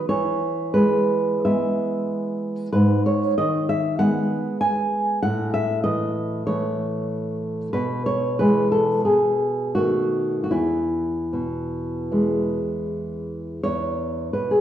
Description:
romantic piece for solo classical guitar; 75-98 BPM; 4/4; rubato; E major; A4 = 440 Hz
nylon-string guitar; solo; 0.0-14.6 s; E2 to G#5; -20 LUFS; equal
wet recital hall reverb, RT60 1.3 s; recorded in a church or concert hall; -20 LUFS; side -10 dB against mid
0.0-13.7 A section
0.1 E; 2.7 G#m; 5.2 A; 7.7 E/B; 9.1 B7; 10.5 E; 13.7 E5
| 0.10 0.74 1.45 2.10 | 2.73 3.38 4.00 4.62 | 5.24 5.86 6.49 7.11 | 7.75 8.40 9.07 9.78 | 10.55 11.35 12.13 12.90 | 13.66 14.35

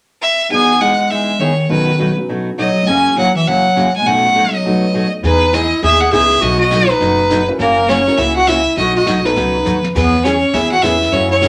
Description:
country, western swing; 203 BPM; 4/4; swing 61% on 8ths; E major; A4 = 440 Hz
clear fiddle; melody; 0.2-11.5 s; A#4 to G#5; -17 LUFS; equal
breathy clarinet; second line; 0.5-11.5 s; D#3 to G#4; -19 LUFS; equal
dark upright piano; accompaniment; 0.5-11.1 s; E2 to D#5; -26 LUFS; equal
picked steel-string acoustic guitar; accompaniment; 0.5-11.5 s; F#2 to G#4; -22 LUFS; equal
upright bass; bass; 5.2-11.5 s; F#1 to F#2; -23 LUFS; equal
jazz brush drum kit; drums; 5.2-11.5 s; brushed snare drum, crash cymbal, hi-hat, kick drum, snare drum, toms; -28 LUFS; equal
moderate studio reverb, RT60 0.5 s; -14 LUFS; mono
0.5-5.2 A section; 5.2-11.5 B section
drum fill 9.7
0.0 N.C.; 0.5 Emaj7; 1.7 B7; 2.9 F#7; 4.1 B7; 5.2 Emaj7; 6.4 B7; 7.6 F#7; 8.8 B7; 10.0 E6
0.22 | 0.52 0.81 1.10 1.40 | 1.70 1.99 2.29 2.58 | 2.88 3.17 3.47 3.76 | 4.06 4.35 4.65 4.94 | 5.24 5.53 5.83 6.12 | 6.42 6.71 7.01 7.30 | 7.60 7.89 8.19 8.48 | 8.78 9.07 9.36 9.66 | 9.95 10.25 10.54 10.83 | 11.13 11.42

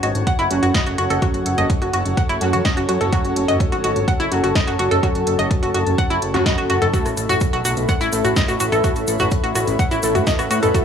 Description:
melodic techno; 126 BPM; 4/4; straight; F# minor; A4 = 442 Hz
dark analog pad; sustained chords; 0.0-10.8 s; A4 to C#6; -26 LUFS; left 3 dB; chorus, sidechain pumping
analog pluck; arpeggios; 0.0-10.8 s; E4 to F#5; -21 LUFS; equal; chorus, sidechain pumping, analog delay
synth brass stab; stabs; 0.0-10.8 s; F#3 to A4; -25 LUFS; right 1 dB; chorus, sidechain pumping, analog delay
fat analog bass; bass; 0.0-10.7 s; F#1 to A2; -24 LUFS; equal; sidechain pumping
deep house drum kit; drums; 0.0-10.8 s; hi-hat, rim click, snare drum, toms; -26 LUFS; right 1 dB
granular cloud pad; texture; 0.0-10.8 s; E4 to A5; -28 LUFS; right 1 dB; built-in reverb, sidechain pumping
electronic kick drum; drums; 0.3-10.8 s; -20 LUFS; equal
egg shaker; percussion; 6.9-10.8 s; -31 LUFS; left 3 dB
light reverb; dry, gritty hardware recording; -16 LUFS; side -7 dB against mid
0.0-10.8 A section
0.0 F#m; 6.9 Aadd9
0.27 0.74 | 1.22 1.70 2.17 2.65 | 3.13 3.60 4.08 4.55 | 5.03 5.51 5.98 6.46 | 6.93 7.41 7.89 8.36 | 8.84 9.32 9.79 10.27 | 10.74

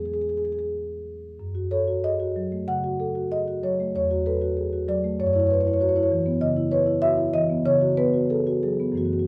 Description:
classical, contemporary piece for solo marimba; 95 BPM; 4/4; uneven beats, rubato; F# dorian; A4 = 440 Hz
marimba with soft mallets; solo; 0.0-9.3 s; E2 to F#5; -24 LUFS; equal
moderate stone room reverb, RT60 1.1 s; close, detailed microphones; -24 LUFS; mono
0.0-9.3 A section
0.0 Eadd9; 1.4 F#m6; 3.9 Esus24; 5.2 F#7sus4; 6.4 C#m7; 7.7 C#7sus4
0.07 0.72 | 1.39 2.04 2.68 3.32 | 3.95 4.57 5.19 5.80 | 6.42 7.03 7.66 8.30 | 8.97

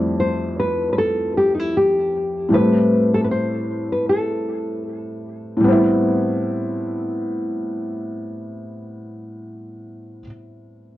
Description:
hip hop; 77 BPM; 4/4; swing 56% on 16ths; A minor; A4 = 440 Hz
nylon-string guitar; melody; 0.0-4.8 s; D#4 to D5; -20 LUFS; left 1 dB; low-pass filter, analog delay
felt-muted upright piano; accompaniment; 0.0-11.0 s; F2 to E4; -21 LUFS; equal; cassette tape, low-pass filter
wet studio reverb, RT60 0.7 s; dark, warm production; -18 LUFS; side -15 dB against mid
0.0-5.6 A section; 5.6-8.8 B section
0.0 Fmaj9; 2.5 Am7; 5.6 Am9
0.18 0.96 1.74 | 2.52 3.30 4.08 4.86 | 5.64 6.42 7.20 7.98

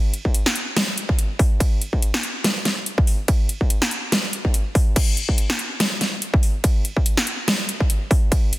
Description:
future bass; 143 BPM; 4/4; swing 56% on 16ths, half-time
dubstep drum kit; drums; 0.1-8.6 s; crash cymbal, hi-hat, ride cymbal, snare drum; -22 LUFS; equal
electronic kick drum; drums; 0.3-8.4 s; -18 LUFS; equal; distortion
light reverb, digital ambience; dense, heavily limited modern master; -18 LUFS; side -18 dB against mid
0.0-8.6 A section
0.34 0.77 1.18 | 1.60 2.02 2.44 2.86 | 3.28 3.70 4.12 4.54 | 4.96 5.38 5.80 6.22 | 6.64 7.06 7.48 7.90 | 8.32

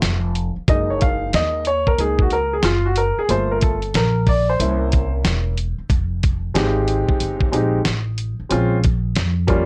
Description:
hip hop, jazz-hop; 92 BPM; 4/4; swing 64% on 16ths; F minor; A4 = 440 Hz
warm upright piano; accompaniment; 0.0-9.7 s; G3 to F5; -22 LUFS; equal
upright bass; bass; 0.0-9.7 s; E1 to F2; -24 LUFS; equal
dusty soul sampler-style drum kit; drums; 0.0-9.7 s; hi-hat, kick drum, snare drum; -22 LUFS; equal
light reverb; worn, warbling old tape, cassette tape, warbly pitch drift; -19 LUFS; mono
0.0-5.9 A section; 5.9-9.7 B section
upright piano solo 0.0-5.9
0.0 G9 (rootless); 0.7 Gb69; 3.3 Gm9; 4.6 C7b9; 5.9 Fm9; 8.5 Bbm7
0.03 | 0.68 1.34 1.99 2.64 | 3.29 3.94 4.60 5.25 | 5.90 6.55 7.21 7.86 | 8.51 9.16

